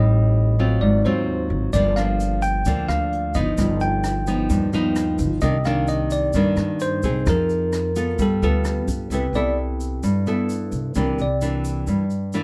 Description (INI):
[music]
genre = bossa nova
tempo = 130 BPM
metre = 4/4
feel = straight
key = C major from 9.1 s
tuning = A4 = 439 Hz
[part]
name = bell-like tine electric piano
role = melody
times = 0.0-11.4 s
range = A4 to G5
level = -27 LUFS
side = equal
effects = none
[part]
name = nylon-string guitar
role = accompaniment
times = 0.0-12.4 s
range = G2 to A4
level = -24 LUFS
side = equal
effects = none
[part]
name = upright bass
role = bass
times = 0.0-12.1 s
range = G1 to G2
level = -26 LUFS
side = equal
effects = none
[part]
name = jazz brush drum kit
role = drums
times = 1.7-9.0 s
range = hi-hat, kick drum, rim click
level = -31 LUFS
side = equal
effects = none
[part]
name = tube shaker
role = percussion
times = 1.7-12.4 s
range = none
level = -44 LUFS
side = equal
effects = none
[sound]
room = moderate studio reverb, RT60 0.5 s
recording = dark, warm production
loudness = -21 LUFS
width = mono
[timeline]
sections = 0.0-9.1 A section; 9.1-12.4 B section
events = tine electric piano solo 9.1-12.4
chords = 0.0 Am7b5; 0.8 Ab6; 1.7 Gm7; 3.6 Gaug7; 5.4 Cm9; 7.3 Fm7; 8.2 G9; 9.1 C6; 11.0 C9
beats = 0.35 0.81 1.27 | 1.74 2.20 2.66 3.12 | 3.58 4.04 4.50 4.96 | 5.42 5.88 6.34 6.81 | 7.27 7.73 8.19 8.65 | 9.11 9.57 10.03 10.49 | 10.95 11.41 11.88 12.34